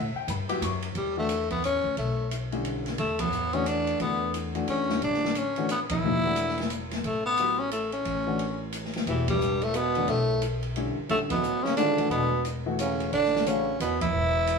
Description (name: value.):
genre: modal jazz.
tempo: 178 BPM.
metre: 3/4.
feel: swing 62% on 8ths.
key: E dorian.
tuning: A4 = 439 Hz.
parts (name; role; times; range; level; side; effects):
clear grand piano; accompaniment; 0.0-13.6 s; D3 to D6; -31 LUFS; left 5 dB; none.
upright bass; bass; 0.0-14.6 s; E1 to A2; -33 LUFS; equal; none.
open jazz drum kit; drums; 0.3-14.6 s; hi-hat, kick drum, ride cymbal, snare drum; -34 LUFS; equal; none.
growling tenor saxophone; melody; 1.0-14.6 s; E3 to E4; -27 LUFS; equal; none.
clear trombone; second line; 9.1-14.6 s; E2 to E3; -31 LUFS; right 4 dB; none.
room: moderate stone room reverb, RT60 1.5 s.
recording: band playing live in one room, studio reverb.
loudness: -25 LUFS.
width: side -5 dB against mid.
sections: 1.0-14.6 A section.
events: band accent 3.2, 5.9, 9.2, 11.3, 14.0.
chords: 0.0 A9sus4; 1.0 E9sus4; 5.0 A7sus4; 9.1 E9sus4; 13.1 Asus4.